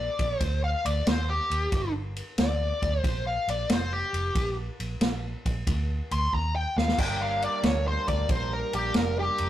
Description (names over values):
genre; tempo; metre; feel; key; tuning
blues rock power trio and southern rock; 91 BPM; 4/4; swing 68% on 8ths; G minor; A4 = 440 Hz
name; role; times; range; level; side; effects
smooth overdriven lead guitar; melody; 0.0-9.5 s; G4 to C6; -28 LUFS; left 1 dB; wah, slapback echo
vintage muted fingered electric bass; bass; 0.0-9.5 s; F1 to Eb2; -30 LUFS; right 1 dB; none
vintage drum kit; drums; 0.2-9.5 s; crash cymbal, kick drum, ride cymbal, snare drum, splash cymbal; -29 LUFS; equal; none
percussive tonewheel organ; sustained chords; 7.0-9.5 s; G3 to Bb4; -34 LUFS; right 3 dB; slow rotary speaker
room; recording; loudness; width
light reverb; rough rehearsal-room recording, tube saturation; -25 LUFS; side -12 dB against mid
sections
0.0-9.5 A section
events
lead electric guitar solo 0.0-9.5; drum fill 6.3-7.0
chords
0.0 Gm